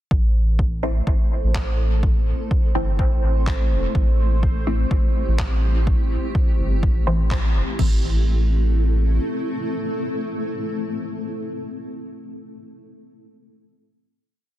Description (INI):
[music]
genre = dub techno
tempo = 125 BPM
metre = 4/4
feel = swing 53% on 16ths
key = A minor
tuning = A4 = 440 Hz
[part]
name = granular cloud pad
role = sustained chords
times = 0.8-12.2 s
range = A3 to A4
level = -28 LUFS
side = left 1 dB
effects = built-in reverb, sidechain pumping
[part]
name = warm sub bass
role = bass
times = 0.1-9.2 s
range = E1 to A1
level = -20 LUFS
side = equal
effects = sidechain pumping
[part]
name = deep house drum kit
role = drums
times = 0.1-7.9 s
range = crash cymbal, kick drum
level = -21 LUFS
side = equal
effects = none
[part]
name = bubbling stepped-filter texture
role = texture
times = 0.1-7.8 s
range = C5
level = -34 LUFS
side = right 8 dB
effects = chorus, built-in reverb, sidechain pumping
[part]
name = filtered dub chord stab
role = stabs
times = 0.8-12.2 s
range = E3 to C4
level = -28 LUFS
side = left 1 dB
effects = phaser, sidechain pumping, dub echo
[part]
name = electronic handclaps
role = drums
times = 1.5-7.4 s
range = none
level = -34 LUFS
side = equal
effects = soft clipping on snare, dub echo
[sound]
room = digital ambience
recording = dense, heavily limited modern master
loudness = -18 LUFS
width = side -14 dB against mid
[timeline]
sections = 0.1-7.8 groove; 7.8-11.6 final chord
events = band accent 7.3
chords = 0.1 Am